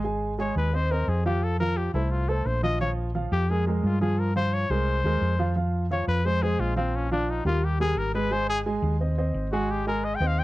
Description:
Afro-Cuban jazz; 174 BPM; 4/4; straight; Ab major; A4 = 439 Hz
dark baby grand piano; accompaniment; 0.0-10.4 s; F3 to Ab5; -29 LUFS; right 2 dB
hollow-body short-scale fingered electric bass; bass; 0.0-10.4 s; Ab1 to G2; -26 LUFS; equal
warm trumpet; melody; 0.4-10.4 s; C4 to G5; -29 LUFS; left 3 dB
small room ambience; dry, close 1970s-style studio recording; -23 LUFS; side -17 dB against mid
0.0-10.4 A section
trumpet solo 0.0-10.4
0.0 Ab6; 1.4 F; 2.8 Bb5; 4.2 Bbm13; 4.9 Ab69/C; 5.6 Fmadd11; 6.9 Bb5; 7.6 Eb; 8.3 Ab

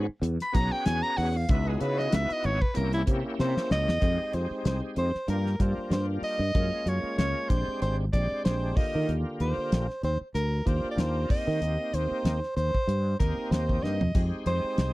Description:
electric jazz fusion; 95 BPM; 4/4; swing 56% on 16ths; A4 = 440 Hz
bright tonewheel organ; accompaniment; 0.0-14.9 s; D3 to G#4; -34 LUFS; equal; slow rotary speaker, overdrive, chorus vibrato
sustaining fretless electric bass; bass; 0.0-14.9 s; G#1 to Eb3; -28 LUFS; equal; analog chorus
damped 70s drum kit; drums; 0.2-14.9 s; hi-hat, kick drum, snare drum, splash cymbal, toms; -27 LUFS; equal
warm soprano saxophone; melody; 0.4-14.9 s; E4 to B5; -31 LUFS; equal; slapback echo
little or no reverb; dry, close 1970s-style studio recording; -25 LUFS; side -19 dB against mid
0.0-4.0 A section; 4.0-14.9 B section
soprano saxophone solo 0.0-4.0; drum fill 3.4-4.0, 13.8-14.1
0.0 E69; 1.5 C#m11; 2.8 C7b9; 4.0 Fm9; 5.3 Gm7; 6.5 Gbmaj9; 7.5 Bb13; 8.8 Ebmaj9; 11.3 Eb6; 14.1 Fm9

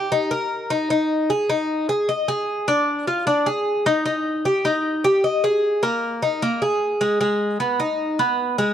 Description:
latin; 152 BPM; 4/4; straight; A4 = 439 Hz
Cuban tres; solo; 0.0-8.7 s; G#3 to D#5; -19 LUFS; equal
light reverb; dark, warm production; -19 LUFS; side -9 dB against mid
0.0-7.2 A section; 7.2-8.7 B section

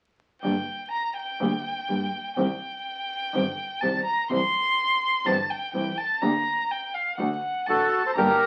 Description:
tango; 124 BPM; 4/4; rubato; G minor; A4 = 441 Hz
rich violin; second line; 0.4-8.5 s; F5 to C6; -29 LUFS; equal
nylon-string guitar; accompaniment; 0.4-8.3 s; C3 to G4; -29 LUFS; equal
bright double bass; bass; 0.4-8.4 s; G1 to D2; -36 LUFS; equal
bandoneon; melody; 7.7-8.5 s; F#4 to C5; -23 LUFS; equal
bandoneon; stabs; 8.2-8.4 s; Bb3 to G4; -35 LUFS; equal
wet studio ambience, RT60 0.5 s; very old 78 rpm record, vinyl crackle; -26 LUFS; mono
0.4-8.2 A section
0.4 Gm; 2.4 Cm; 4.3 C; 6.2 Gm/D; 7.2 D

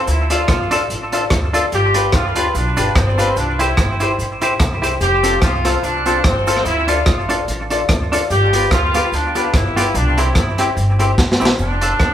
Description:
ska; 146 BPM; 4/4; swing 55% on 8ths; F major; A4 = 439 Hz
clear horn section; melody; 0.0-12.1 s; C4 to G4; -19 LUFS; equal
clear upright piano; stabs; 0.0-11.5 s; E4 to D5; -23 LUFS; left 4 dB
upright bass; bass; 0.1-12.1 s; F1 to D2; -20 LUFS; equal
crunchy breakbeat drum kit; drums; 0.1-12.1 s; hi-hat, kick drum, rim click, snare drum; -18 LUFS; equal
cabasa; percussion; 0.1-12.1 s; -37 LUFS; right 6 dB
clean electric guitar; accompaniment; 0.3-11.9 s; B3 to C5; -22 LUFS; right 2 dB; tremolo, tape echo
wet large studio reverb, RT60 1.2 s; band playing live in one room; -14 LUFS; side -10 dB against mid
0.0-11.6 A section
drum fill 11.2-11.6
0.1 Dm; 1.7 G7; 3.4 C; 5.0 F; 6.7 Dm; 8.3 G7; 9.9 C; 11.6 F6

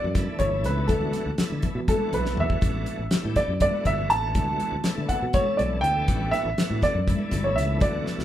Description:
electric jazz fusion; 243 BPM (eighths); 7/8; straight; A4 = 440 Hz
clear grand piano; melody; 0.0-8.2 s; A4 to A5; -26 LUFS; right 1 dB
bright tonewheel organ; accompaniment; 0.0-8.2 s; B2 to A4; -33 LUFS; equal; chorus vibrato, slow rotary speaker
fingered electric bass; bass; 0.0-8.2 s; G1 to D3; -28 LUFS; equal
congas; percussion; 0.0-8.2 s; -34 LUFS; left 1 dB
damped 70s drum kit; drums; 0.1-8.2 s; hi-hat, kick drum, snare drum, toms; -26 LUFS; equal
moderate large studio reverb, RT60 1.2 s; band playing live in one room; -22 LUFS; side -12 dB against mid
0.0-8.2 A section
drum fill 2.3-2.6, 8.1
0.0 A7sus4; 0.9 D6; 2.6 A7sus4; 4.4 D6; 6.1 A7sus4

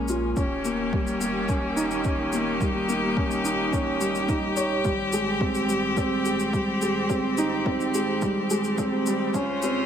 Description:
piano and strings electronica; 107 BPM; 4/4; straight; A4 = 440 Hz
clear string quartet; sustained chords; 0.0-9.9 s; Db3 to C5; -28 LUFS; left 1 dB; sidechain pumping
felt-muted upright piano; riff; 0.0-9.9 s; G3 to Db5; -25 LUFS; equal; tape echo
round analog bass; bass; 0.0-9.9 s; Eb1 to Db2; -41 LUFS; equal; sidechain pumping
shaker; drums; 0.1-9.7 s; -37 LUFS; left 4 dB
electronic kick drum; drums; 0.4-9.5 s; -29 LUFS; equal
moderate lush hall reverb, RT60 1.8 s; high-pass filter; -22 LUFS; side -8 dB against mid
0.0-9.9 A section
build-up 0.0-9.9
0.4 Eb7; 4.9 Abmaj7; 9.3 Dbmaj7

